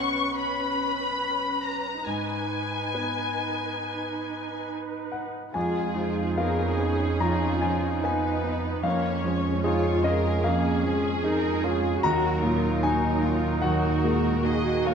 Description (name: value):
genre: cinematic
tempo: 68-76 BPM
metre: 4/4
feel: rubato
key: unclear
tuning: A4 = 440 Hz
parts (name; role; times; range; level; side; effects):
- muted symphonic violin section; melody; 0.0-14.9 s; Ab4 to C#6; -31 LUFS; left 5 dB; none
- clear grand piano; accompaniment; 0.0-14.9 s; B1 to Bb5; -28 LUFS; left 2 dB; none
- muted studio viola section; accompaniment; 0.0-14.9 s; Gb3 to B4; -29 LUFS; right 3 dB; none
- muted studio double bass section; bass; 5.5-14.9 s; Eb2 to F2; -30 LUFS; right 3 dB; none
- muted studio cello section; bass; 5.6-14.9 s; Db4 to Bb4; -32 LUFS; left 1 dB; none
room: moderate concert hall reverb, RT60 2.1 s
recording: none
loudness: -23 LUFS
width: side -7 dB against mid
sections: 0.0-5.5 A section; 5.5-14.9 B section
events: none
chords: 0.0 Bsus2; 2.1 Abm; 5.5 Fdim; 8.8 Dbadd9/F; 12.0 Ebm